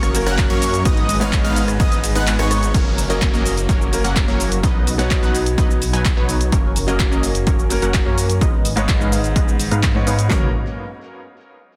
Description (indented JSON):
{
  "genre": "EDM, festival progressive house",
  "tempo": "127 BPM",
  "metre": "4/4",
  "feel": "straight",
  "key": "F# major",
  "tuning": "A4 = 440 Hz",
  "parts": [
    { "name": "bright grand piano", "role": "accompaniment", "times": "0.0-10.5 s", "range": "G#2 to C#5", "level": "-27 LUFS", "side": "equal", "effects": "sidechain pumping, digital delay" },
    { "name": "lush unison pad", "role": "sustained chords", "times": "0.0-2.7 s", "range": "F#3 to D#5", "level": "-32 LUFS", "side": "equal", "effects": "none" },
    { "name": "unison lead", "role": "arpeggios", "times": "0.0-2.7 s", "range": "C#6 to F#6", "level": "-29 LUFS", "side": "equal", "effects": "sidechain pumping, digital delay" },
    { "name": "supersaw stab", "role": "riff", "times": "0.0-10.5 s", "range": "F#3 to G#5", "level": "-26 LUFS", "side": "equal", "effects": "sidechain pumping, low-pass filter, digital delay" },
    { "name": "detuned saw bass", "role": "bass", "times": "0.0-10.5 s", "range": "F#1 to G#2", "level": "-24 LUFS", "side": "equal", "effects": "chorus, sidechain pumping" },
    { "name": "big-room dance drum kit", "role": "drums", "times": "0.0-10.3 s", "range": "handclaps, hi-hat, ride cymbal, rim click, shaker", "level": "-27 LUFS", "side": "equal", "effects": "none" },
    { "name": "big-room dance drum kit", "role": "drums", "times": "0.4-10.4 s", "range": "handclaps, kick drum, toms", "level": "-21 LUFS", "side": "equal", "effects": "overdrive" },
    { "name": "downlifter", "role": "sound effects", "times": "2.7-6.5 s", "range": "none", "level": "-36 LUFS", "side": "equal", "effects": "none" }
  ],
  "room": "light reverb",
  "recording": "dense, heavily limited modern master",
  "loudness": "-18 LUFS",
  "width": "mono",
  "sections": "0.0-2.7 A section; 2.7-10.3 B section; 10.3-11.8 C section",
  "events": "drop 0.0-2.7; kick drops out 2.3-2.7; filter sweep on supersaw synth 2.7-10.3; filter sweep on detuned saw bass 2.7-10.3",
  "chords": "0.0 F#; 0.9 G#m; 2.7 F#; 4.6 B; 6.5 F#; 8.4 G#m; 10.3 F#"
}